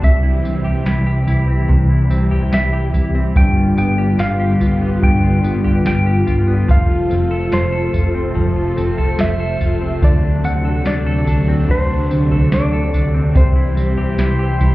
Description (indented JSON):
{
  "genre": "dream pop",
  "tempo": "72 BPM",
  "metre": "4/4",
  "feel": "straight",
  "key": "C major",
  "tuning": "A4 = 439 Hz",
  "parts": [
    { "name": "clean lap steel guitar", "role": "melody", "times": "0.0-14.7 s", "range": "C5 to G5", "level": "-24 LUFS", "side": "equal", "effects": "digital delay" },
    { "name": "string machine, violas", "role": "sustained chords", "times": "0.0-14.7 s", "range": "C3 to A4", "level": "-21 LUFS", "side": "equal", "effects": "ensemble chorus" },
    { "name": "clean electric guitar", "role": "arpeggios", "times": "0.0-14.7 s", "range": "G2 to A4", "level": "-20 LUFS", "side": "left 1 dB", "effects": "wide subtle chorus, digital delay" },
    { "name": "hollow-body short-scale fingered electric bass", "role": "bass", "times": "0.0-14.7 s", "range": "F1 to D2", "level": "-18 LUFS", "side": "equal", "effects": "none" },
    { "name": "soft vintage rhythm box", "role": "drums", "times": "0.0-14.7 s", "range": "kick drum, snare drum, tambourine, toms", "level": "-17 LUFS", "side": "equal", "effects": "none" },
    { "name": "drifting glass-harmonics texture", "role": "texture", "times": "8.7-14.7 s", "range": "G4 to C5", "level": "-32 LUFS", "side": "equal", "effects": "chorus, built-in reverb, digital delay" }
  ],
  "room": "light reverb",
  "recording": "heard muffled through a wall, club reverb, EQ",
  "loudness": "-13 LUFS",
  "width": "side -18 dB against mid",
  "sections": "0.0-14.7 A section",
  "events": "none",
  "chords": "0.0 C; 3.4 G7; 6.7 F; 10.0 D7; 13.4 C",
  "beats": "| 0.03 0.86 1.69 2.52 | 3.36 4.19 5.03 5.86 | 6.69 7.53 8.36 9.19 | 10.03 10.86 11.69 12.53 | 13.36 14.19"
}